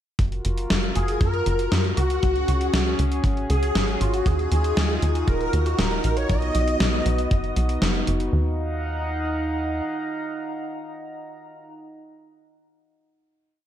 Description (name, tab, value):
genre	synthwave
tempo	118 BPM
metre	4/4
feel	straight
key	Eb minor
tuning	A4 = 441 Hz
part	chorused pulse-width pad	sustained chords	0.2-11.7 s	B3 to Bb5	-29 LUFS	equal	sidechain pumping
part	tight sequencer bass	bass	0.2-9.8 s	Eb1 to Gb2	-24 LUFS	equal	sidechain pumping
part	gated 80s digital drum machine	drums	0.2-8.3 s	hi-hat, snare drum	-26 LUFS	equal	gated reverb, gated reverb snare
part	kick drum	drums	0.2-7.4 s	none	-23 LUFS	equal	none
part	wide unison lead	melody	1.0-7.8 s	F4 to D#5	-28 LUFS	equal	ensemble chorus, ping-pong delay
part	string machine, violins	second line	1.0-7.8 s	F4 to D#5	-32 LUFS	left 1 dB	ensemble chorus, ping-pong delay
room	light reverb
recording	dark, warm production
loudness	-20 LUFS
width	side -10 dB against mid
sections	0.2-8.3 verse; 8.3-12.4 final chord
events	none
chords	0.2 Gbmaj7; 2.2 Dbsus4; 4.3 Ebmadd9; 6.3 B; 8.3 Ebmadd9